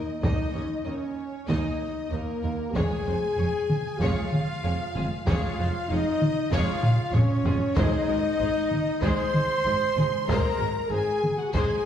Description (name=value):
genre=cinematic, epic orchestral film score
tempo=96 BPM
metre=4/4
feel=straight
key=unclear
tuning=A4 = 441 Hz
part: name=warm symphonic violin section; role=second line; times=0.0-11.9 s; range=Bb4 to C6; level=-34 LUFS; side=left 3 dB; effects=none
part: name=mellow French horn section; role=sustained chords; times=0.0-11.9 s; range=Bb3 to C5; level=-29 LUFS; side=left 2 dB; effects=none
part: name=dark trumpet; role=stabs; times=0.0-11.9 s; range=Bb3 to C5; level=-33 LUFS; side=right 2 dB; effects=none
part: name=warm symphonic violin section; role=melody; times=0.2-11.8 s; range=Ab4 to Eb5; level=-38 LUFS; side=left 4 dB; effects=none
part: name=rich symphonic viola section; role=accompaniment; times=0.2-11.8 s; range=Ab3 to Ab4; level=-37 LUFS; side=right 1 dB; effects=none
part: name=rich symphonic cello section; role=bass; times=0.2-11.6 s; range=Eb2 to Ab2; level=-33 LUFS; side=right 2 dB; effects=none
part: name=rich symphonic double bass section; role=bass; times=0.2-11.6 s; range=F1 to Eb2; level=-33 LUFS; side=right 2 dB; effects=none
part: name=taiko ensemble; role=drums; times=0.2-11.9 s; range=none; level=-26 LUFS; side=equal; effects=none
room=wet scoring stage reverb, RT60 1.6 s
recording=heard from further back in the room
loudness=-23 LUFS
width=side -9 dB against mid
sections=0.0-11.9 A section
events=drum fill 6.8-7.8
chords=0.0 Eb5; 2.8 Db/F; 7.8 Ab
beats=| 0.23 0.86 1.49 2.12 | 2.76 3.39 4.01 4.64 | 5.27 5.89 6.52 7.14 | 7.77 8.39 9.03 9.66 | 10.29 10.91 11.54